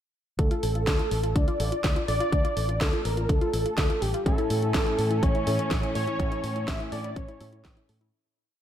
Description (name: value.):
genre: italo disco.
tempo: 124 BPM.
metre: 4/4.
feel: straight.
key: D harmonic minor.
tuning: A4 = 438 Hz.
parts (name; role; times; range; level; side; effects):
wide unison lead; melody; 0.4-7.9 s; G4 to E5; -29 LUFS; equal; ping-pong delay.
warbly dusty pluck; arpeggios; 0.4-8.1 s; C#4 to A4; -35 LUFS; left 4 dB; chorus, ping-pong delay.
fingered electric bass with an envelope filter; bass; 0.4-8.1 s; A1 to A2; -30 LUFS; equal; none.
electronic kick drum; drums; 0.4-7.7 s; none; -26 LUFS; equal; none.
house drum kit; drums; 0.4-8.1 s; hi-hat, snare drum; -34 LUFS; equal; gated reverb.
dark chamber string section; sustained chords; 4.3-8.1 s; E3 to C#4; -35 LUFS; equal; none.
dark grand piano; stabs; 4.3-8.1 s; A2 to C#5; -36 LUFS; left 1 dB; none.
room: light reverb, digital ambience.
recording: none.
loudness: -24 LUFS.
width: side -10 dB against mid.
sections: 0.4-8.1 verse.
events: fade-out 5.6-8.1.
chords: 0.4 Dm; 4.3 A.